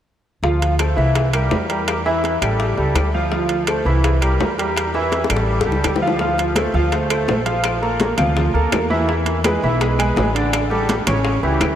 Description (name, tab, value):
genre	latin, salsa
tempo	166 BPM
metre	4/4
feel	straight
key	D minor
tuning	A4 = 438 Hz
part	bright grand piano	accompaniment	0.4-11.7 s	C#3 to F5	-19 LUFS	right 1 dB	analog chorus
part	upright bass	bass	0.4-11.8 s	A1 to E2	-21 LUFS	equal	none
part	bongos	percussion	0.4-11.8 s	none	-26 LUFS	left 5 dB	none
part	timbales	percussion	0.6-11.8 s	none	-27 LUFS	right 4 dB	none
part	claves	percussion	0.8-11.8 s	none	-34 LUFS	left 9 dB	none
part	congas	percussion	6.2-11.8 s	none	-27 LUFS	left 1 dB	none
room	wet huge ambient reverb, RT60 4.4 s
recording	dreamy mix soaked in reverb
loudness	-16 LUFS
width	side -10 dB against mid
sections	0.4-6.2 A section; 6.2-11.8 B section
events	drum fill 5.1-6.2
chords	0.4 Dm7; 1.2 C7; 1.9 Edim; 2.6 A7; 3.3 Dm7; 4.0 C7; 4.8 Edim; 5.5 A7; 6.2 Dm7; 7.6 Bbmaj7; 9.1 E7; 10.5 A7sus4; 11.2 A7